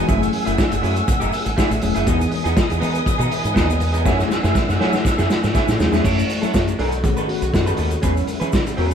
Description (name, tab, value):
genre	disco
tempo	121 BPM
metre	4/4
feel	straight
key	unclear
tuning	A4 = 440 Hz
part	electric guitar through a small old amp	accompaniment	0.0-8.9 s	A3 to B4	-25 LUFS	right 3 dB	none
part	mellow tine electric piano	accompaniment	0.0-8.9 s	D#3 to E5	-24 LUFS	left 4 dB	medium stereo tremolo
part	warm studio string section	sustained chords	0.0-8.9 s	C#3 to E6	-27 LUFS	right 1 dB	none
part	fingered electric bass with an envelope filter	bass	0.1-8.9 s	E1 to F#3	-23 LUFS	equal	none
part	vintage drum kit	drums	0.1-8.9 s	crash cymbal, hi-hat, kick drum, snare drum	-21 LUFS	equal	none
part	egg shaker	percussion	0.1-8.9 s	none	-39 LUFS	left 6 dB	none
room	moderate stone room reverb, RT60 1.2 s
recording	band playing live in one room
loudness	-16 LUFS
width	side -8 dB against mid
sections	0.0-6.0 A section; 6.0-8.9 B section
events	drum fill 4.1-6.0; tine electric piano solo 6.0-8.9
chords	0.1 F#m9; 2.1 Emaj7; 4.1 F#m9; 6.0 F#m7; 6.8 B7; 8.0 E6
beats	| 0.09 0.58 1.08 1.57 | 2.07 2.57 3.06 3.56 | 4.05 4.55 5.05 5.55 | 6.04 6.54 7.04 7.54 | 8.03 8.53